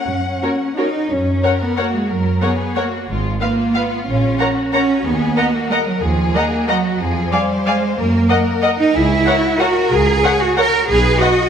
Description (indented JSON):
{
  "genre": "classical, orchestral ballroom waltz",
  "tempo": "167-199 BPM",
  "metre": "3/4",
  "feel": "rubato",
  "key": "F# major",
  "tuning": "A4 = 438 Hz",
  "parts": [
    { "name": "warm symphonic violin section", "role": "melody", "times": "0.0-11.5 s", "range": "F4 to F#5", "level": "-24 LUFS", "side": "left 6 dB", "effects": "none" },
    { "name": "rich symphonic cello section", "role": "bass", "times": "0.0-11.5 s", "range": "E#3 to A#4", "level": "-17 LUFS", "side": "right 2 dB", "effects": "none" },
    { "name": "rich symphonic double bass section", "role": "bass", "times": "0.1-11.1 s", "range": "Ab1 to F#2", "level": "-21 LUFS", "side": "right 2 dB", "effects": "none" },
    { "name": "dark symphonic violin section", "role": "second line", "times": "0.4-11.3 s", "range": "A#4 to A#5", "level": "-22 LUFS", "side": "left 2 dB", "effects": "none" },
    { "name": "rich symphonic viola section", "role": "accompaniment", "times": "0.4-11.3 s", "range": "C#4 to D#5", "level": "-24 LUFS", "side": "equal", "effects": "none" },
    { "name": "mellow French horn section", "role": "sustained chords", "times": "0.4-0.9 s", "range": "A#3 to F#4", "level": "-30 LUFS", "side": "left 2 dB", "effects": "none" }
  ],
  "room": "moderate scoring stage reverb, RT60 1.5 s",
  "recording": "none",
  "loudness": "-14 LUFS",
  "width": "side -8 dB against mid",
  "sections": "0.0-1.1 A section; 1.1-11.5 B section",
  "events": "none",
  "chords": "0.0 F#; 3.1 Fdim/Ab; 4.1 F#/A#; 5.0 D#m; 7.0 Ddim/F; 8.0 D#m/F#; 8.9 F#7/C#; 10.9 B"
}